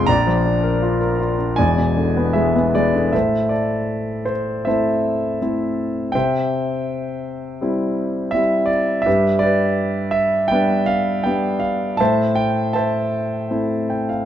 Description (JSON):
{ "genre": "classical, lyrical solo piano", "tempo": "80 BPM", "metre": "4/4", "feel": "rubato", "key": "A minor from 3.1 s", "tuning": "A4 = 440 Hz", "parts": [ { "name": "warm concert grand piano", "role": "solo", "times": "0.0-14.3 s", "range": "E1 to C6", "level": "-17 LUFS", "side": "equal", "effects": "none" } ], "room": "moderate recital hall reverb, RT60 1.3 s", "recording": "dark, warm production", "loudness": "-17 LUFS", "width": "side -10 dB against mid", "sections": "0.0-3.1 A section; 3.1-14.3 B section", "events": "grand piano fill 13.5-14.3", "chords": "0.1 Bb; 1.6 E7; 3.1 Am; 6.1 C; 9.1 G; 12.0 Am", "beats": "| 0.08 0.83 1.58 2.36 | 3.13 3.90 4.67 5.41 | 6.15 6.88 7.62 8.34 | 9.06 9.79 10.52 11.26 | 12.00 12.75 13.50" }